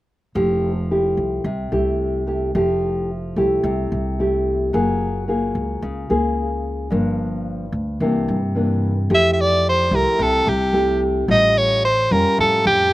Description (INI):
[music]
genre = bossa nova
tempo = 110 BPM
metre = 4/4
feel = straight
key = F major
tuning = A4 = 441 Hz
[part]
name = nylon-string guitar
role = accompaniment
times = 0.3-12.9 s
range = G2 to Ab4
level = -20 LUFS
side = left 1 dB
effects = slapback echo
[part]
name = upright bass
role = bass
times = 0.4-12.9 s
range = F1 to G2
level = -24 LUFS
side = equal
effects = none
[part]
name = edgy soprano saxophone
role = melody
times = 9.1-12.9 s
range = G4 to E5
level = -16 LUFS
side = equal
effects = none
[sound]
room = little or no reverb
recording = recorded outdoors, with no room sound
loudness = -17 LUFS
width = side -16 dB against mid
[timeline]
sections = 0.4-9.1 A section; 9.1-12.9 B section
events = none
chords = 0.4 Fmaj9; 4.7 Gbmaj9; 6.9 Gm7; 8.0 C9; 9.1 Fmaj9; 11.3 Aaug7